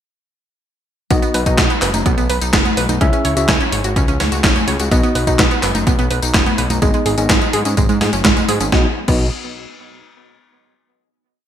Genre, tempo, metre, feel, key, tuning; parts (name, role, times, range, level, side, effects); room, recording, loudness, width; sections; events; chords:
italo disco; 126 BPM; 4/4; straight; B major; A4 = 440 Hz
analog pluck; arpeggios; 1.1-9.3 s; G#3 to C#5; -21 LUFS; right 4 dB; chorus, vintage 12-bit sampler grit, ping-pong delay
mellow tine electric piano; stabs; 1.1-9.3 s; B3 to E5; -22 LUFS; left 2 dB; ping-pong delay
fat analog bass; bass; 1.1-9.3 s; F#1 to G#2; -20 LUFS; equal; tube saturation, ping-pong delay
electronic kick drum; drums; 1.1-9.2 s; -18 LUFS; equal
gated 80s digital drum machine; drums; 1.1-9.2 s; congas, crash cymbal, handclaps, hi-hat, snare drum, tambourine; -18 LUFS; equal; gated reverb, gated reverb snare
light reverb; bright 1980s-style digital production; -13 LUFS; side -10 dB against mid
1.1-8.7 chorus; 8.7-10.6 final chord
1.1 B; 3.0 C#m; 4.9 B; 6.8 G#m; 8.7 B